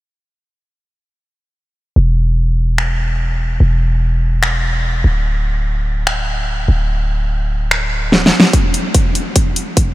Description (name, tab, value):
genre	future bass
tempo	146 BPM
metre	4/4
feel	half-time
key	unclear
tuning	A4 = 440 Hz
part	warm 808-style bass	bass	2.0-8.3 s	D1 to E1	-15 LUFS	equal	sidechain pumping
part	big-room dance drum kit	drums	2.8-9.9 s	finger snaps, hi-hat, snare drum	-17 LUFS	equal	high-pass filter on snare, high-pass filter on hats
part	electronic kick drum	drums	8.5-9.9 s	none	-13 LUFS	equal	none
room	light reverb, digital ambience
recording	none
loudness	-13 LUFS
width	side -17 dB against mid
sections	2.0-8.5 A section; 8.5-9.9 B section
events	drum fill 8.1-8.5; build-up 8.5-9.9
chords	none